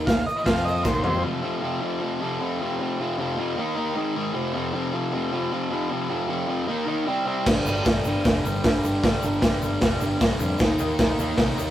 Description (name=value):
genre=garage rock duo or trio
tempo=154 BPM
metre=4/4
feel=straight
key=unclear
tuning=A4 = 440 Hz
part: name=fuzz guitar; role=riff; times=0.0-11.7 s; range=F2 to F4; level=-25 LUFS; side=equal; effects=distortion
part: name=picked electric bass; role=bass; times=0.0-1.2, 7.5-11.7 s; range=F1 to F2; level=-30 LUFS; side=equal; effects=overdrive
part: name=egg shaker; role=percussion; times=0.0-1.2, 7.5-11.7 s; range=none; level=-46 LUFS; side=left 3 dB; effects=none
part: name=overdriven combo organ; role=melody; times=0.1-1.2 s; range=C5 to F5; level=-26 LUFS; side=right 1 dB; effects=none
part: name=raw garage drum kit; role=drums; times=0.1-1.1, 7.5-11.5 s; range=crash cymbal, hi-hat, kick drum, snare drum, toms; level=-22 LUFS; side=equal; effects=none
room=light reverb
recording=rough rehearsal-room recording, warm saturation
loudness=-22 LUFS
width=side -12 dB against mid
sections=0.0-1.2 A section; 1.2-11.7 B section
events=transistor combo organ solo 0.0-1.2; drum fill 0.8-1.2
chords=0.5 F5; 0.8 Eb5; 1.2 F5; 3.6 Eb5; 4.0 Ab5; 4.4 F5; 6.7 Eb5; 7.1 C5; 7.5 G5; 10.6 Eb5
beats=0.07 0.46 0.85 | 1.24 1.63 2.02 2.41 | 2.80 3.19 3.57 3.96 | 4.35 4.74 5.13 5.52 | 5.91 6.30 6.69 7.08 | 7.47 7.86 8.25 8.64 | 9.03 9.42 9.81 10.20 | 10.59 10.98 11.38